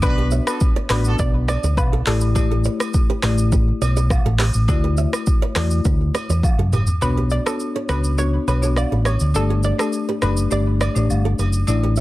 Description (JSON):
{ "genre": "afrobeats", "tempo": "103 BPM", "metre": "4/4", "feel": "straight", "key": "B minor", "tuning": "A4 = 440 Hz", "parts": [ { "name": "hollow square pluck", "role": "melody", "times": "0.0-2.2, 7.0-10.9 s", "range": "A4 to D5", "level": "-27 LUFS", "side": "right 1 dB", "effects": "chorus, plate reverb, digital delay" }, { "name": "warm horn section", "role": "second line", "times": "0.0-1.1 s", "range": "D4 to B4", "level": "-31 LUFS", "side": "right 3 dB", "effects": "plate reverb, digital delay" }, { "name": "marimba with medium mallets", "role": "accompaniment", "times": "0.0-11.8 s", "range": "A3 to D5", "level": "-25 LUFS", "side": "left 4 dB", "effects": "plate reverb" }, { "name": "fingered electric bass", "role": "bass", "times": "0.0-12.0 s", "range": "F#1 to F#2", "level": "-19 LUFS", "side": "equal", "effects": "none" }, { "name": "afro-pop drum kit", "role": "drums", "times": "0.0-12.0 s", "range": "handclaps, hi-hat, kick drum, rim click, shaker, toms", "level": "-20 LUFS", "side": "equal", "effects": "none" }, { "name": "agogo bells and woodblock", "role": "percussion", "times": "0.0-11.8 s", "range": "none", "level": "-32 LUFS", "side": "right 3 dB", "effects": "none" }, { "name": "flamenco guitar", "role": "riff", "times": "0.2-12.0 s", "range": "F#4 to E5", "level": "-29 LUFS", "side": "right 7 dB", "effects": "digital delay" } ], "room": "little or no reverb", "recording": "dense, heavily limited modern master", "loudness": "-16 LUFS", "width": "side -17 dB against mid", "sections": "0.0-7.0 A section; 7.0-12.0 B section", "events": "drum fill 6.4-7.0; kick muted 7.0-12.0", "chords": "0.0 Bm; 2.1 A7sus4; 4.7 Dadd9; 7.0 Bmadd9; 9.3 Gsus2" }